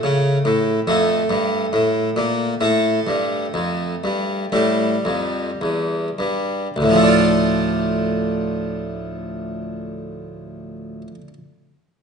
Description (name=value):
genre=classical, baroque-style suite movement for harpsichord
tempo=50-72 BPM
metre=4/4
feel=rubato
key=D minor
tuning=A4 = 440 Hz
part: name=harpsichord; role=solo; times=0.0-11.3 s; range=D2 to F4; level=-18 LUFS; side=equal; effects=none
room=wet recital hall reverb, RT60 1.3 s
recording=nothing above 10.3 kHz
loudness=-17 LUFS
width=side -6 dB against mid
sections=0.0-6.8 A section; 6.8-11.4 B section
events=slowing down 0.0-6.8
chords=0.0 A; 0.9 Fadd9; 4.5 A5; 6.8 Dm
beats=0.03 0.86 1.73 | 2.62 3.55 4.54 5.61 | 6.78 7.94 9.09 10.25